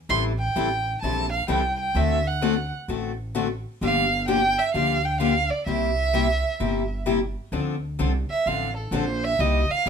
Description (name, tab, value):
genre	acoustic string swing (jazz manouche)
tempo	129 BPM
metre	4/4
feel	swing 64% on 8ths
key	unclear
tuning	A4 = 440 Hz
part	warm violin	melody	0.1-9.9 s	A4 to C6	-24 LUFS	right 3 dB	none
part	picked steel-string acoustic guitar	accompaniment	0.1-9.9 s	C3 to A4	-26 LUFS	left 6 dB	none
part	upright bass	bass	0.1-9.9 s	G1 to D2	-27 LUFS	right 1 dB	none
room	moderate studio reverb, RT60 0.7 s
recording	minimal, uncompressed stereo recording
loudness	-22 LUFS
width	side -6 dB against mid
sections	0.0-7.5 A section; 7.5-9.9 B section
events	violin solo 7.5-9.9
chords	0.1 Am7; 2.0 D7; 3.8 Gm7; 5.7 C7; 7.5 Dm7; 9.4 Cm7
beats	| 0.10 0.56 1.03 1.49 | 1.96 2.42 2.89 3.35 | 3.82 4.28 4.75 5.21 | 5.68 6.14 6.61 7.07 | 7.54 8.00 8.46 8.93 | 9.39 9.86